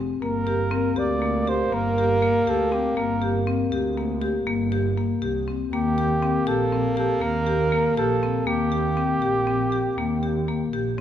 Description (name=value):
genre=contemporary instrumental, chamber music in an uneven meter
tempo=240 BPM (eighths)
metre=11/8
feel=straight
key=unclear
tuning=A4 = 440 Hz
part: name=marimba with hard mallets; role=arpeggios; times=0.0-11.0 s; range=Bb3 to G4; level=-25 LUFS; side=left 6 dB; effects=none
part: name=dark double bass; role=bass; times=0.0-11.0 s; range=F1 to Eb2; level=-27 LUFS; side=right 4 dB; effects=none
part: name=mellow flugelhorn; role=melody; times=0.2-11.0 s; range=G4 to D5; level=-26 LUFS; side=right 3 dB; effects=none
part: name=mellow French horn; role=second line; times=0.2-10.9 s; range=Bb3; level=-28 LUFS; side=equal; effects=none
room=moderate recital hall reverb, RT60 1.7 s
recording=none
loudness=-21 LUFS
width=side -10 dB against mid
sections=0.0-11.0 A section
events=none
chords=0.2 Gm; 5.7 Eb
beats=| 0.23 0.48 0.73 0.98 1.23 1.48 1.73 1.98 2.22 2.47 2.72 | 2.97 3.22 3.47 3.72 3.97 4.22 4.47 4.72 4.97 5.22 5.47 | 5.72 5.97 6.22 6.47 6.72 6.97 7.22 7.47 7.72 7.97 8.22 | 8.47 8.72 8.97 9.22 9.47 9.72 9.97 10.22 10.48 10.73 10.98